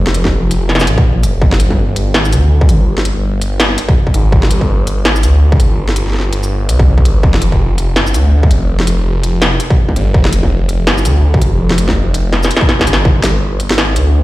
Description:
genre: half-time drum and bass.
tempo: 165 BPM.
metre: 4/4.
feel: swing 59% on 16ths, half-time.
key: G phrygian.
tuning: A4 = 440 Hz.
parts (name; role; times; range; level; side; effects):
phased detuned saw bass; bass; 0.0-14.2 s; F1 to D2; -12 LUFS; equal; phaser.
industrial drum kit; drums; 0.1-14.0 s; hi-hat, shaker, snare drum; -16 LUFS; equal; none.
electronic kick drum; drums; 0.2-13.1 s; none; -12 LUFS; equal; distortion.
room: digital ambience.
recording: played on a big sound system in a bare room, stone room reverb.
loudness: -10 LUFS.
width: side -17 dB against mid.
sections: 0.0-13.1 A section; 13.1-14.2 A section.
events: drop 0.0-13.1, 13.1-14.2; kick drops out 1.1-1.4; drum fill 12.3-13.1.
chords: none.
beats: 0.33 0.69 1.05 | 1.42 1.78 2.14 2.51 | 2.87 3.23 3.60 3.96 | 4.33 4.69 5.05 5.42 | 5.78 6.14 6.51 6.87 | 7.23 7.60 7.96 8.32 | 8.69 9.05 9.42 9.78 | 10.14 10.51 10.87 11.23 | 11.60 11.96 12.32 12.69 | 13.05 13.42 13.78 14.14.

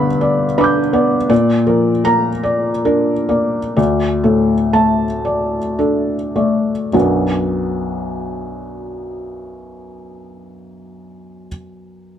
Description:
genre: neoclassical minimalist piano.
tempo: 34-56 BPM (dotted quarters).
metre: 6/8.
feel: rubato.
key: B minor.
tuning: A4 = 440 Hz.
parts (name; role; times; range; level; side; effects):
felt-muted upright piano; solo; 0.0-12.2 s; B1 to G6; -14 LUFS; left 1 dB; none.
room: moderate studio reverb, RT60 0.6 s.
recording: none.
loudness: -14 LUFS.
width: side -9 dB against mid.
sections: 0.0-6.9 A section; 6.9-10.3 B section.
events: slowing down 0.2-6.9.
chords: 0.0 G; 1.3 A#; 3.8 D5; 6.9 Bm.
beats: 0.22 | 1.31 2.46 | 3.77 5.25 | 6.93 8.64.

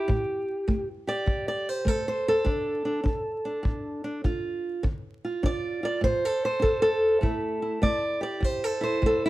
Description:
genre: acoustic country blues, solo or duo.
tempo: 101 BPM.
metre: 4/4.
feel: swing 66% on 8ths.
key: A minor.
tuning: A4 = 440 Hz.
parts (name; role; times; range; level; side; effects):
fingerpicked steel-string acoustic guitar; melody; 0.0-9.3 s; E2 to D5; -25 LUFS; right 1 dB; none.
kick drum; drums; 0.1-9.2 s; none; -28 LUFS; equal; none.
room: light reverb.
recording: dark, warm production, vinyl crackle.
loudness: -24 LUFS.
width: side -17 dB against mid.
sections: 0.0-9.3 A section.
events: none.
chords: 0.0 Am7; 2.5 Dm7; 7.2 Am7.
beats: | 0.09 0.68 1.28 1.87 | 2.46 3.06 3.65 4.25 | 4.84 5.44 6.04 6.63 | 7.23 7.83 8.42 9.02.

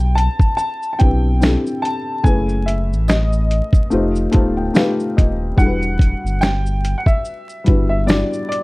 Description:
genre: lo-fi hip hop.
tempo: 72 BPM.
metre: 4/4.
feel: swing 56% on 16ths.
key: E minor.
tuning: A4 = 440 Hz.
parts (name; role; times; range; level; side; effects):
warm upright piano; melody; 0.0-8.6 s; D5 to A5; -23 LUFS; equal; none.
felt-muted upright piano; accompaniment; 0.0-8.6 s; G3 to A5; -21 LUFS; left 2 dB; cassette tape.
sub bass with octave; bass; 0.0-8.2 s; D1 to B1; -18 LUFS; equal; none.
dusty soul sampler-style drum kit; drums; 0.2-8.6 s; finger snaps, hi-hat, kick drum, shaker, snare drum; -15 LUFS; equal; none.
tambourine; percussion; 1.4-8.3 s; none; -42 LUFS; right 6 dB; none.
room: light reverb.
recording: dark, warm production, vinyl crackle.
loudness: -14 LUFS.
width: side -22 dB against mid.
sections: 0.0-8.6 A section.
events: felt piano fill 3.9-5.6.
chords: 0.0 Am11; 2.2 F#m11; 3.9 F9; 5.6 Em9.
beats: 0.58 1.41 | 2.24 3.08 3.91 4.74 | 5.58 6.41 7.24 8.08.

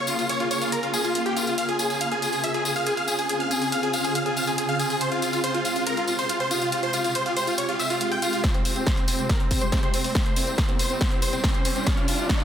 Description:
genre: uplifting trance.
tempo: 140 BPM.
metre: 4/4.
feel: straight.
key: unclear.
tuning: A4 = 440 Hz.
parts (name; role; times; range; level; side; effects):
big supersaw lead; melody; 0.0-12.4 s; C4 to G5; -25 LUFS; equal; sidechain pumping, low-pass filter, dub echo.
big-room dance drum kit; drums; 0.1-12.4 s; hi-hat, snare drum; -30 LUFS; equal; sidechain pumping on hats.
tambourine; percussion; 0.1-12.4 s; none; -32 LUFS; left 3 dB; none.
electronic kick drum; drums; 8.4-12.4 s; none; -24 LUFS; equal; overdrive.
riser; sound effects; 9.8-12.4 s; none; -34 LUFS; right 1 dB; none.
room: light reverb.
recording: none.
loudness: -22 LUFS.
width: side -9 dB against mid.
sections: 0.0-8.4 A section; 8.4-12.4 B section.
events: build-up 8.4-12.4; drum fill 8.4-12.4; riser 9.8-12.4.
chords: none.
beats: 0.29 0.72 1.15 | 1.58 2.01 2.44 2.87 | 3.29 3.72 4.15 4.58 | 5.01 5.44 5.87 6.29 | 6.72 7.15 7.58 8.01 | 8.44 8.87 9.29 9.72 | 10.15 10.58 11.01 11.44 | 11.87 12.29.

